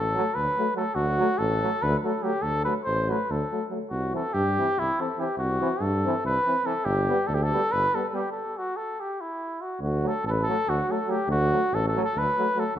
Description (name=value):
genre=balkan folk, Balkan brass band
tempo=284 BPM (eighths)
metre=7/8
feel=straight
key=D mixolydian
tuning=A4 = 440 Hz
part: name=cornet with cup mute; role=melody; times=0.0-12.8 s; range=E4 to C5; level=-26 LUFS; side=equal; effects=none
part: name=warm tuba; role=bass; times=0.0-12.8 s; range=G1 to G2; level=-28 LUFS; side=equal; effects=none
part: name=clear trombone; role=accompaniment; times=0.1-12.6 s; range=E3 to G3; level=-33 LUFS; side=right 6 dB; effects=none
part: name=warm euphonium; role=accompaniment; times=0.2-12.6 s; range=A3 to C4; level=-33 LUFS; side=left 5 dB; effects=none
room=moderate recital hall reverb, RT60 1.6 s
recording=minimal, uncompressed stereo recording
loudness=-23 LUFS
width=side -10 dB against mid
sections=0.0-9.8 A section; 9.8-12.8 A section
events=stop 8.3-9.8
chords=0.0 D; 3.9 C; 6.8 G; 8.3 N.C.; 9.8 D